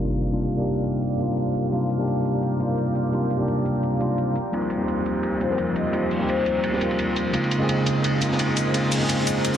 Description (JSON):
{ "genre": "liquid drum and bass", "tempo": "171 BPM", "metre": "4/4", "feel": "straight", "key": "C minor", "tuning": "A4 = 440 Hz", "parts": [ { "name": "tine electric piano", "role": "accompaniment", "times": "0.0-9.6 s", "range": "C3 to Ab4", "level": "-22 LUFS", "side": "equal", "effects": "tape echo" }, { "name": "airy breathy pad", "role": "sustained chords", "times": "0.0-9.6 s", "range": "Db3 to F5", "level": "-29 LUFS", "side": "right 1 dB", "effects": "chorus, phaser" }, { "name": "electronic hi-hat and cabasa", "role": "drums", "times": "0.1-9.6 s", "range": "none", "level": "-31 LUFS", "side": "equal", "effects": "studio reverb" }, { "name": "crunchy breakbeat drum kit", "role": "drums", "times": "4.5-9.6 s", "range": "hi-hat, ride cymbal, snare drum", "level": "-28 LUFS", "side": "equal", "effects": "high-pass filter on cymbals, studio reverb, high-pass filter on hats, high-pass filter on snare, high-pass filter on room" }, { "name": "vibraphone with medium hard mallets", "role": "melody", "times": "5.4-6.6 s", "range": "Bb4 to Eb5", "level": "-28 LUFS", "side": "left 5 dB", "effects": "tape echo" } ], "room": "moderate lush hall reverb, RT60 1.9 s, small room ambience", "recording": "dense, heavily limited modern master, low-pass filter, faint mains hum", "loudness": "-21 LUFS", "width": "side -9 dB against mid", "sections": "0.0-9.6 A section", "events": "filter sweep 0.0-9.6", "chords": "0.0 Cm11; 4.4 F9sus4; 7.3 Dbmaj13", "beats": "| 0.32 0.67 1.02 1.38 | 1.73 2.08 2.43 2.78 | 3.13 3.48 3.83 4.18 | 4.53 4.88 5.24 5.58 | 5.94 6.29 6.64 6.99 | 7.34 7.69 8.04 8.39 | 8.74 9.09 9.45" }